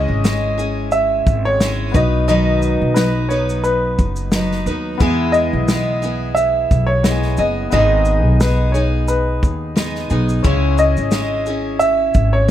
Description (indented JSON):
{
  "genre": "acoustic pop",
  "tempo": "88 BPM",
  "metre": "4/4",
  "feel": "swing 55% on 16ths",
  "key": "unclear",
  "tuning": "A4 = 440 Hz",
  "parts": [
    { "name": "warm upright piano", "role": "melody", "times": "0.0-12.5 s", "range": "B4 to E5", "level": "-19 LUFS", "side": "equal", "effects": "none" },
    { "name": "clear concert grand piano", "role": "accompaniment", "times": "0.0-12.5 s", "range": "G#3 to G#5", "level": "-26 LUFS", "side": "left 6 dB", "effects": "none" },
    { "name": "picked steel-string acoustic guitar", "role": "accompaniment", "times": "0.0-12.5 s", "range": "G#2 to B4", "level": "-22 LUFS", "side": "right 1 dB", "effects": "none" },
    { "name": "upright bass", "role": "bass", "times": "0.0-12.5 s", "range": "F#1 to E2", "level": "-19 LUFS", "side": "equal", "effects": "none" },
    { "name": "natural country drum kit", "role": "drums", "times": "0.2-12.5 s", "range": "kick drum, shaker, snare drum", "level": "-20 LUFS", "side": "equal", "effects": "none" }
  ],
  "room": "little or no reverb",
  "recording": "none",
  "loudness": "-14 LUFS",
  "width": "side -12 dB against mid",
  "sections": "0.0-12.5 A section",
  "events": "none",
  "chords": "0.0 C#m; 1.9 B; 5.0 E; 7.7 G#m; 10.5 C#m",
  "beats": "0.25 0.93 1.61 | 2.29 2.97 3.65 4.33 | 5.01 5.69 6.37 7.05 | 7.73 8.41 9.09 9.77 | 10.45 11.13 11.81 12.49"
}